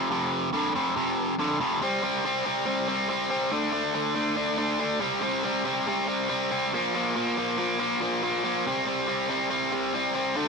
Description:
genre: rock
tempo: 140 BPM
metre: 4/4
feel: straight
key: unclear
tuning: A4 = 445 Hz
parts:
  - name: biting overdriven guitar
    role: solo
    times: 0.0-10.5 s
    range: F2 to D4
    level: -24 LUFS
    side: equal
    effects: none
room: moderate studio reverb, RT60 0.9 s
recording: band playing live in one room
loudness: -24 LUFS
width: side -4 dB against mid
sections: 0.0-1.8 A section; 1.8-10.5 B section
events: none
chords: 0.0 F5; 1.8 C5; 3.5 D5; 5.0 C5; 6.7 Bb5; 8.7 C5

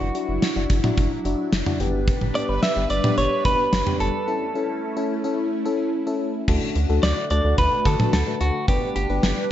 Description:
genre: synth-pop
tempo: 109 BPM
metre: 4/4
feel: straight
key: D major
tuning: A4 = 440 Hz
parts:
  - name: clean electric guitar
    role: melody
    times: 0.0-9.5 s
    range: F#4 to E5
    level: -25 LUFS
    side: equal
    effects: spring reverb, analog delay
  - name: FM electric piano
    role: accompaniment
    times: 0.0-9.4 s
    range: A3 to B4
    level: -27 LUFS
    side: left 3 dB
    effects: chorus
  - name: phased analog pad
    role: sustained chords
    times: 0.0-9.5 s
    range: D3 to B4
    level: -28 LUFS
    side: right 1 dB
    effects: phaser, chorus
  - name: rubbery square bass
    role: bass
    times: 0.0-9.3 s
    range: F#1 to D3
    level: -24 LUFS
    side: equal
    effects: none
  - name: gated 80s drum kit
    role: drums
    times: 0.1-9.4 s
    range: cowbell, crash cymbal, hi-hat, kick drum, snare drum, toms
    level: -23 LUFS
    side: equal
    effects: none
room: moderate concert hall reverb, RT60 2.1 s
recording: dark, warm production, nothing above 7.8 kHz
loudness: -20 LUFS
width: side -11 dB against mid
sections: 0.0-6.5 A section; 6.5-9.5 B section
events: break 4.3-6.5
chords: 0.0 Dadd9/F#; 1.8 G; 4.3 A; 6.5 D; 8.7 G

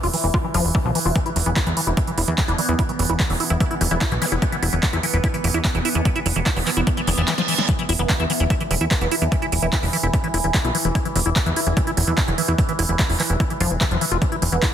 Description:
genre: psychedelic trance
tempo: 147 BPM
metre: 4/4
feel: straight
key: unclear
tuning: A4 = 440 Hz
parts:
  - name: overtone-sweeping drone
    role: sustained chords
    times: 0.0-14.7 s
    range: E3 to E4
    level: -28 LUFS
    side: right 1 dB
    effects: chorus, built-in reverb, phaser, sidechain pumping
  - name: liquid acid bass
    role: riff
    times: 0.0-14.7 s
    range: E3 to F4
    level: -25 LUFS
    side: moving between left 8 dB and right 6 dB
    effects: chorus, auto-pan, sidechain pumping, ping-pong delay
  - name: plucky analog bass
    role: bass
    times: 0.0-14.6 s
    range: E1 to E2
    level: -22 LUFS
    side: equal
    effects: none
  - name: big-room dance drum kit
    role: drums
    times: 0.0-14.7 s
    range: handclaps, hi-hat, snare drum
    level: -25 LUFS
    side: right 2 dB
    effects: overdrive
  - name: electronic kick drum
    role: drums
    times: 0.3-14.7 s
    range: none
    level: -22 LUFS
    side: equal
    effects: overdrive
  - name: resonant blip pluck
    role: second line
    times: 1.5-4.1, 8.0-10.2, 14.5-14.7 s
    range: E3 to E4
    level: -31 LUFS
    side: right 5 dB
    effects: phaser, sidechain pumping, high-pass filter, tape echo
  - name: zap and reverse cymbal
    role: sound effects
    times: 4.2-4.3, 7.0-7.7 s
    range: none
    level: -28 LUFS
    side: right 6 dB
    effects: none
room: little or no reverb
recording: dense, heavily limited modern master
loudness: -18 LUFS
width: side -9 dB against mid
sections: 0.0-14.7 A section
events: filter sweep on acid bass 0.0-14.7; reverse cymbal 7.0-7.7; drum fill 7.3-7.7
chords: 0.0 E5

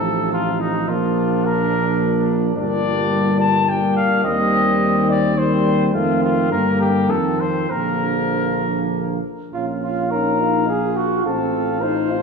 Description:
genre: classical, brass quintet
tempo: 106 BPM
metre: 3/4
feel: rubato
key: Bb major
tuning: A4 = 440 Hz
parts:
  - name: warm trumpet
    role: melody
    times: 0.0-12.2 s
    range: Eb4 to A5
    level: -22 LUFS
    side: left 4 dB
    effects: none
  - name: mellow trumpet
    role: second line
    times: 0.0-12.2 s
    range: Bb3 to C5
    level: -25 LUFS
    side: right 3 dB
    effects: none
  - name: clear French horn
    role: accompaniment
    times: 0.0-12.2 s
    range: F3 to F4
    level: -23 LUFS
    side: left 2 dB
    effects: none
  - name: mellow trombone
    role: accompaniment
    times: 0.0-12.2 s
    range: Bb2 to F4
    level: -25 LUFS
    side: right 2 dB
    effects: none
  - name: mellow tuba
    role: bass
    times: 0.0-12.2 s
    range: G1 to G2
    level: -23 LUFS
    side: right 1 dB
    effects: none
room: moderate concert hall reverb, RT60 2.2 s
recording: worn, warbling old tape, cassette tape, warbly pitch drift, studio reverb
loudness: -16 LUFS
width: side -5 dB against mid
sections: 0.0-9.5 A section; 9.5-12.2 B section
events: none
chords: 0.0 F7/A; 0.9 Bb; 2.6 Gm; 4.2 Cm/Eb; 5.9 F7; 6.5 Gm; 7.1 F7; 7.7 Bb; 9.5 Bbm; 11.3 F/A

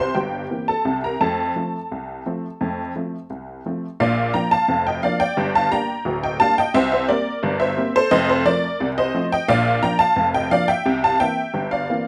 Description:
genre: ragtime piano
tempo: 87 BPM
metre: 2/4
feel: straight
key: Bb major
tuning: A4 = 440 Hz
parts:
  - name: honky-tonk upright piano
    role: solo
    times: 0.0-12.1 s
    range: D1 to C6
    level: -20 LUFS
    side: equal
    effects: none
room: light reverb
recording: none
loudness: -20 LUFS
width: mono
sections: 0.0-4.0 A section; 4.0-12.1 B section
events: none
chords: 0.0 C7; 1.2 F; 4.0 Bb; 5.4 Gm; 6.7 C5; 8.1 F7; 9.5 Bb; 10.9 C7

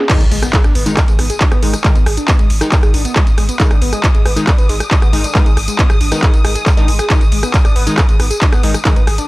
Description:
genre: driving peak-time techno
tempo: 137 BPM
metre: 4/4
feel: straight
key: G# minor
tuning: A4 = 441 Hz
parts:
  - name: overdriven synth lead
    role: riff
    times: 0.0-9.3 s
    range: G#3 to G#4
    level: -23 LUFS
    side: equal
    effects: phaser, tube saturation, sidechain pumping, analog delay
  - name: noise sweep and impact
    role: sound effects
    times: 0.0-1.8 s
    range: none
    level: -26 LUFS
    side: equal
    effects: none
  - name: wavetable chord stab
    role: stabs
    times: 0.1-9.0 s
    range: D#3 to D#4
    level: -22 LUFS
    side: left 2 dB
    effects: phaser, sidechain pumping, analog delay
  - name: electronic kick drum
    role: drums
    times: 0.1-8.9 s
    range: none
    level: -12 LUFS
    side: equal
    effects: none
  - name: techno drum kit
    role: drums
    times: 0.1-9.3 s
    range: crash cymbal, handclaps, hi-hat, ride cymbal, rim click, tambourine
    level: -18 LUFS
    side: equal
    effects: low-pass filter on snare, low-pass filter on hats, low-pass filter on cymbals, low-pass filter on perc
  - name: saturated sub bass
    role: bass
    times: 0.2-9.2 s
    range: G#1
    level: -18 LUFS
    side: equal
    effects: tube saturation, sidechain pumping, low-pass filter
  - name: dark chamber string section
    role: texture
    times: 1.1-9.3 s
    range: D#6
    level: -26 LUFS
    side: left 3 dB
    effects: sidechain pumping
room: digital ambience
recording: home recording on cassette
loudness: -10 LUFS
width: side -20 dB against mid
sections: 0.1-9.3 A section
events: drop 0.1-9.3; impact 0.1-1.8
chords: 0.1 G#5

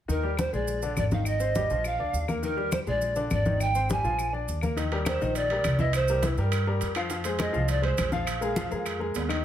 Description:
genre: latin, salsa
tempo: 205 BPM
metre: 4/4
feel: straight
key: Eb major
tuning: A4 = 440 Hz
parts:
  - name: reedy pan flute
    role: melody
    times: 0.1-9.0 s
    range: Bb4 to Ab5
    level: -29 LUFS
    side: right 2 dB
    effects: none
  - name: bright baby grand piano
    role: accompaniment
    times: 0.1-9.4 s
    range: D3 to F5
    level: -32 LUFS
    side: left 4 dB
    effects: none
  - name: upright bass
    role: bass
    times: 0.1-9.4 s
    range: Ab1 to G2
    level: -29 LUFS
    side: equal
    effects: none
  - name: congas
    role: percussion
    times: 0.1-9.3 s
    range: none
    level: -33 LUFS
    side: left 2 dB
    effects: none
  - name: maracas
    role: percussion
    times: 0.1-9.4 s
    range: none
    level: -42 LUFS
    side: right 6 dB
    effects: none
  - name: claves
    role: percussion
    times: 0.4-9.4 s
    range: none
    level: -41 LUFS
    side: left 4 dB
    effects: none
  - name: timbales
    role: percussion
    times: 4.8-9.4 s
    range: none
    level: -35 LUFS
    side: right 6 dB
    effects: none
room: moderate large studio reverb, RT60 0.9 s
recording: none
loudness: -24 LUFS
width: side -10 dB against mid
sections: 0.1-4.8 A section; 4.8-9.4 B section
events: none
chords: 0.1 Eb; 0.7 Bb7; 1.3 Abmaj7; 1.8 Bb; 2.4 Eb; 3.0 Bb7; 3.6 Abmaj7; 4.2 Bb; 4.8 Ebmaj7; 5.9 C7; 7.1 Fm7; 8.3 Bb5

